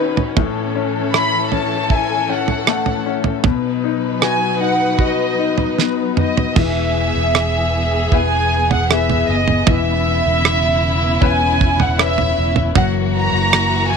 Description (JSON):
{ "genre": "pop ballad", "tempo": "78 BPM", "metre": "4/4", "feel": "straight", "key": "E major", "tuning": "A4 = 442 Hz", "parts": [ { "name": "warm studio violin section", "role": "melody", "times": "0.0-14.0 s", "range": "B4 to B5", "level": "-19 LUFS", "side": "right 1 dB", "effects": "slapback echo" }, { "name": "bright baby grand piano", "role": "accompaniment", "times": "0.0-14.0 s", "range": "A2 to B4", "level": "-21 LUFS", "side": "left 12 dB", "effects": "none" }, { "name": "warm studio string section", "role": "sustained chords", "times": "0.0-14.0 s", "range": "C#3 to B4", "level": "-23 LUFS", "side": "equal", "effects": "none" }, { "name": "damped 70s drum kit", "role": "drums", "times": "0.2-13.7 s", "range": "crash cymbal, kick drum, rim click, snare drum, toms", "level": "-17 LUFS", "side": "right 5 dB", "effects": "none" }, { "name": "fingered electric bass", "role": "bass", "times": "6.6-14.0 s", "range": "E1 to F#1", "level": "-20 LUFS", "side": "right 1 dB", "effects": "none" } ], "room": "small room ambience", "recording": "1960s-style stereo", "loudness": "-14 LUFS", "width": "side -6 dB against mid", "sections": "0.0-6.6 A section; 6.6-14.0 B section", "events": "drum fill 5.8-6.6", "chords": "0.4 A; 3.4 B; 6.6 E; 9.7 C#m7/E; 12.8 F#7", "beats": "| 0.37 1.14 1.91 2.67 | 3.44 4.22 4.99 5.78 | 6.57 7.35 8.13 8.91 | 9.68 10.46 11.23 12.00 | 12.76 13.53" }